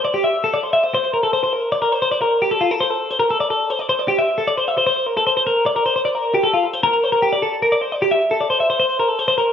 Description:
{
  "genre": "rock",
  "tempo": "153 BPM",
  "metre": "5/4",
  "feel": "straight",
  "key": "unclear",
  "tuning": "A4 = 440 Hz",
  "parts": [
    { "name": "twelve-string electric guitar", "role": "solo", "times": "0.0-9.5 s", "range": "F4 to E5", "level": "-16 LUFS", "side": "left 1 dB", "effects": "spring reverb, slapback echo" }
  ],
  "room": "wet studio reverb, RT60 0.6 s",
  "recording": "rough home demo mix",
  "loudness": "-16 LUFS",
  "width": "side -8 dB against mid",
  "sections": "0.0-9.5 A section",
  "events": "none",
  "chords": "none"
}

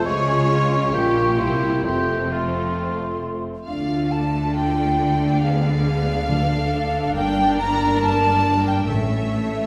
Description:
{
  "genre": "classical",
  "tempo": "136 BPM",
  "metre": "4/4",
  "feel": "straight",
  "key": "F major, D minor from 3.7 s",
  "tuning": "A4 = 439 Hz",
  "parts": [
    { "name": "clear symphonic violin section", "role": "melody", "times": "0.0-9.7 s", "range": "F4 to D5", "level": "-37 LUFS", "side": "equal", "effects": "none" },
    { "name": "clear symphonic violin section", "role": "second line", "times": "0.0-9.7 s", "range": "C4 to Bb5", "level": "-33 LUFS", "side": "equal", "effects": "none" },
    { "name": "mellow clarinet", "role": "second line", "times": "0.0-3.4 s", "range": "E4 to F4", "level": "-34 LUFS", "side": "equal", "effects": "none" },
    { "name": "mellow hollow silver concert flute", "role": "second line", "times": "0.0-9.7 s", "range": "E5 to Db6", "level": "-27 LUFS", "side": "equal", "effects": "none" },
    { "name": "warm oboe", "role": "second line", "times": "0.0-3.2 s", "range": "F4 to Db5", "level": "-29 LUFS", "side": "equal", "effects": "none" },
    { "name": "clear symphonic viola section", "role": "accompaniment", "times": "0.0-9.7 s", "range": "A3 to Bb4", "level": "-31 LUFS", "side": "equal", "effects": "none" },
    { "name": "warm bassoon", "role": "accompaniment", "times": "0.0-3.4 s", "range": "Ab3 to Bb3", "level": "-31 LUFS", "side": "equal", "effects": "none" },
    { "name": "mellow French horn section", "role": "sustained chords", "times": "0.0-9.7 s", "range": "Ab3 to F4", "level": "-28 LUFS", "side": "equal", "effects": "none" },
    { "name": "rich symphonic cello section", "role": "bass", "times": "0.1-9.7 s", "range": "F2 to D3", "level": "-28 LUFS", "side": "equal", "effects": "none" },
    { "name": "warm studio double bass section", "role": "bass", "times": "0.1-9.7 s", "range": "F1 to D2", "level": "-30 LUFS", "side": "equal", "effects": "none" },
    { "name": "timpani", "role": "percussion", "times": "6.3-9.5 s", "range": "A2 to D3", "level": "-28 LUFS", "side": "equal", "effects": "none" }
  ],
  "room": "wet recital hall reverb, RT60 1.6 s",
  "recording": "recorded in a church or concert hall",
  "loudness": "-21 LUFS",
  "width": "mono",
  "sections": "0.0-3.7 A section; 3.7-9.7 B section",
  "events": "none",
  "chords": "0.1 Db; 0.9 Gm7b5/Bb; 1.4 C7; 1.8 F; 3.7 Dm; 5.4 Ddim7; 6.3 Dm; 7.2 Gm; 8.9 A"
}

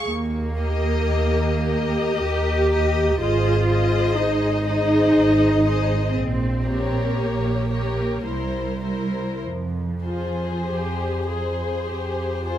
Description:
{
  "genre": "classical, slow romantic movement for string orchestra",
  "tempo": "48-62 BPM",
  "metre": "3/4",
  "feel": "rubato",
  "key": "F minor",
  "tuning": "A4 = 440 Hz",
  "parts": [
    { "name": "rich chamber violin section", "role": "melody", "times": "0.0-12.6 s", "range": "C5 to Eb5", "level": "-29 LUFS", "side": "left 6 dB", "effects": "none" },
    { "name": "warm studio violin section", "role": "second line", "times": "0.0-12.6 s", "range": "Ab4 to C5", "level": "-31 LUFS", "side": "left 2 dB", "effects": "none" },
    { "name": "rich symphonic viola section", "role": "accompaniment", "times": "0.0-12.6 s", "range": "E4 to Ab4", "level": "-28 LUFS", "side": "equal", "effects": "none" },
    { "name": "rich chamber double bass section", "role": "bass", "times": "0.0-12.6 s", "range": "Ab1 to F2", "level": "-24 LUFS", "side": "right 1 dB", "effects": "none" },
    { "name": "rich symphonic cello section", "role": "bass", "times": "0.1-11.9 s", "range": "F3 to G4", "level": "-24 LUFS", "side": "right 1 dB", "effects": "none" }
  ],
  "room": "light reverb",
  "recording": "close, detailed microphones",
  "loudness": "-19 LUFS",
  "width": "side -11 dB against mid",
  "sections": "0.0-12.6 A section",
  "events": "none",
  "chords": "0.1 Eb; 3.2 Ab; 6.1 Gdim/Bb; 8.3 C7; 9.4 Fm"
}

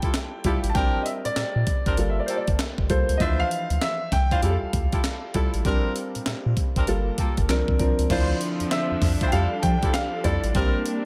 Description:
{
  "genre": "R&B, new jack swing",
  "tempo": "98 BPM",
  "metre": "4/4",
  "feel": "swing 63% on 16ths",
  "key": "F major",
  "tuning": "A4 = 440 Hz",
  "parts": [
    { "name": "warm baby grand piano", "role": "melody", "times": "0.0-11.1 s", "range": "C5 to A5", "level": "-31 LUFS", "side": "equal", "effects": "none" },
    { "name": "dark baby grand piano", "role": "accompaniment", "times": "0.0-11.1 s", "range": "E3 to C5", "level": "-32 LUFS", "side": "equal", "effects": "none" },
    { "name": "clear horn section", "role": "stabs", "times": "0.0-10.8 s", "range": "Bb3 to C5", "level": "-35 LUFS", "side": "equal", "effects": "none" },
    { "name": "breakbeat sampler-style drum kit", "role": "drums", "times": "0.0-11.0 s", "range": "crash cymbal, handclaps, hi-hat, kick drum, snare drum", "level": "-28 LUFS", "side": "equal", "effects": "none" },
    { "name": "round analog bass", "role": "bass", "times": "0.4-10.8 s", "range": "G1 to F3", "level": "-27 LUFS", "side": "equal", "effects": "none" },
    { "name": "warm studio string section", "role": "sustained chords", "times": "8.1-11.1 s", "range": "D3 to A4", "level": "-32 LUFS", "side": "equal", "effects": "none" }
  ],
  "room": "moderate plate reverb, RT60 2.1 s",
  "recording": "dreamy mix soaked in reverb",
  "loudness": "-24 LUFS",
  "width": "mono",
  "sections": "0.0-8.1 A section; 8.1-11.1 B section",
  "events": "none",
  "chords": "0.0 Fmaj9; 0.8 Bb69; 2.0 Gm9; 3.2 Dm9; 4.4 Fmaj9; 5.7 Bb69; 6.9 Gm9; 7.5 C9sus4; 8.1 Dm9; 9.3 Fmaj9; 10.5 Bb69"
}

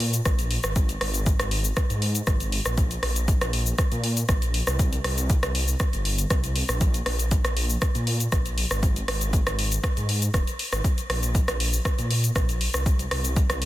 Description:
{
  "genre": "afro house",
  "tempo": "119 BPM",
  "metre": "4/4",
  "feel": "straight",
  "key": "unclear",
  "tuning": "A4 = 440 Hz",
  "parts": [
    { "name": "dark detuned saw bass", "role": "bass", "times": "0.0-13.7 s", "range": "Eb1 to Bb2", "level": "-26 LUFS", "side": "equal", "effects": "tube saturation, sidechain pumping" },
    { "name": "deep house drum kit", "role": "drums", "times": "0.0-13.7 s", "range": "hi-hat, rim click, shaker", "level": "-27 LUFS", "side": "equal", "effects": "soft clipping on snare" },
    { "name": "electronic kick drum", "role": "drums", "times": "0.3-13.5 s", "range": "none", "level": "-23 LUFS", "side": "equal", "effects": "none" }
  ],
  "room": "little or no reverb",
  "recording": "dense, heavily limited modern master",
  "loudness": "-22 LUFS",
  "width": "side -15 dB against mid",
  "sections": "0.0-13.7 A section",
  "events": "none",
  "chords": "none"
}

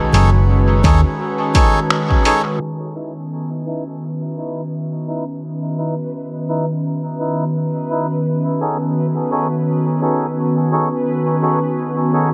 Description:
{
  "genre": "ambient dub",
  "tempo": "85 BPM",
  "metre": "4/4",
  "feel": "swing 58% on 16ths",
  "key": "unclear",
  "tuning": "A4 = 440 Hz",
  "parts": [
    { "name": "airy breathy pad", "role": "sustained chords", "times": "0.0-12.3 s", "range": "D#3 to B4", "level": "-22 LUFS", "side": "equal", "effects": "chorus" },
    { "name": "hollow-body short-scale fingered electric bass", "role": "bass", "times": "0.0-1.0 s", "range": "F#1 to D#2", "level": "-15 LUFS", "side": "equal", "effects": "none" },
    { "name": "melodica", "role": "stabs", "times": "0.1-12.3 s", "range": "D#4 to C#5", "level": "-24 LUFS", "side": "equal", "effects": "low-pass filter, dub echo" },
    { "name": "lo-fi sampler-style drum kit", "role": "drums", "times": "0.1-2.4 s", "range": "finger snaps, hi-hat", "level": "-26 LUFS", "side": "equal", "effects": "overdrive, studio reverb, dub echo" },
    { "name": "electronic kick drum", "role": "drums", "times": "0.8-2.2 s", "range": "none", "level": "-18 LUFS", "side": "equal", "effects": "overdrive, studio reverb" },
    { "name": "backwards swelling texture", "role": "texture", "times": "4.2-12.3 s", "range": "B4", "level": "-31 LUFS", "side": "equal", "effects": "built-in reverb" }
  ],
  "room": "light reverb, digital ambience",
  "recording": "low-pass filter",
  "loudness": "-18 LUFS",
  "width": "mono",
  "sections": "0.0-2.6 A section; 2.6-12.3 B section",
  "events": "band accent 1.9-2.3; filter sweep on analog synth pad 2.6-12.3",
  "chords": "0.0 B13; 2.6 C#m7; 8.3 B13"
}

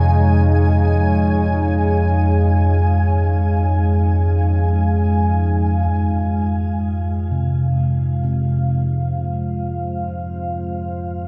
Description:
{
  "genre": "dark ambient drone",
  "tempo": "free time",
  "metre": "none",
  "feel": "none",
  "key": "F minor",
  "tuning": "A4 = 440 Hz",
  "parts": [
    { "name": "deep dark ambient pad", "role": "sustained chords", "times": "0.0-11.3 s", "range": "F2 to F5", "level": "-24 LUFS", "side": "equal", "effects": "chorus, built-in reverb, shimmer reverb" },
    { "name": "deep rumbling drone", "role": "drone", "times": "0.0-11.3 s", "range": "F2 to C3", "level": "-20 LUFS", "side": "equal", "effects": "built-in reverb, subtle chorus" },
    { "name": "flickering grainy texture", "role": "texture", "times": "0.0-5.9 s", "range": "Ab5", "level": "-29 LUFS", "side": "equal", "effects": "built-in reverb, shimmer reverb" },
    { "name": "gamelan-type bossed gongs", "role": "arpeggios", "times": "7.3-11.3 s", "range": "C3", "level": "-24 LUFS", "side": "equal", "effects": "tape echo" }
  ],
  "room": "wet cathedral reverb, RT60 5.0 s",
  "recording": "dark, warm production",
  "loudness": "-18 LUFS",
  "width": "mono",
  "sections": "0.0-5.9 A section; 5.9-11.3 B section",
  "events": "filter sweep on synth drone 5.9-11.3",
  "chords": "0.0 Dbadd9/F; 5.9 Fm"
}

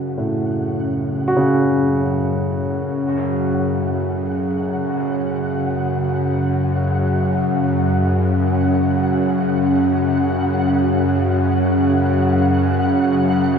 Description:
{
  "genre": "dark ambient drone",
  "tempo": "free time",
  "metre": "none",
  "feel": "none",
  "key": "F# minor",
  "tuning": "A4 = 440 Hz",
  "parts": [
    { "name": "bowed-like drone", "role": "drone", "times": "0.0-13.6 s", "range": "F#2 to C#3", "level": "-17 LUFS", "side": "equal", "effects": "built-in reverb" },
    { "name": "flickering grainy texture", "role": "texture", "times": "0.0-13.6 s", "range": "F#5", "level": "-28 LUFS", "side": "left 1 dB", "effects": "built-in reverb" },
    { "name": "warm concert grand piano", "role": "arpeggios", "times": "0.2-13.6 s", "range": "A2 to F#4", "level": "-22 LUFS", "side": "equal", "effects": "dub echo" }
  ],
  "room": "wet plate reverb, RT60 2.6 s",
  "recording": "echo-heavy mix",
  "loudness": "-16 LUFS",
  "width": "side -6 dB against mid",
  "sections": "0.0-13.6 A section",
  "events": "fade-in on synth texture 0.0-13.6",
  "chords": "0.0 F#m"
}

